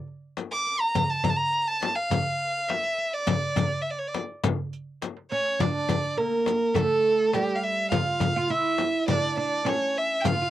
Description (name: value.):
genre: Arabic maqam ensemble.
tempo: 103 BPM.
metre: 4/4.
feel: straight.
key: D maqam nahawand.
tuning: A4 = 439 Hz.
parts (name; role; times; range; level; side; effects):
darbuka; percussion; 0.1-10.5 s; none; -33 LUFS; right 3 dB; none.
frame drum; percussion; 0.4-10.4 s; none; -28 LUFS; left 5 dB; none.
riq; percussion; 0.4-10.4 s; none; -35 LUFS; right 7 dB; none.
clear violin; melody; 0.5-10.5 s; G4 to D6; -26 LUFS; equal; none.
oud; second line; 5.3-10.5 s; G3 to F4; -27 LUFS; right 4 dB; cassette tape.
room: moderate booth ambience, RT60 0.2 s.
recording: home recording on cassette.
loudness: -23 LUFS.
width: side -13 dB against mid.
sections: 0.0-5.6 A section; 5.6-10.5 B section.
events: drum fill 5.0-5.6.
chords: none.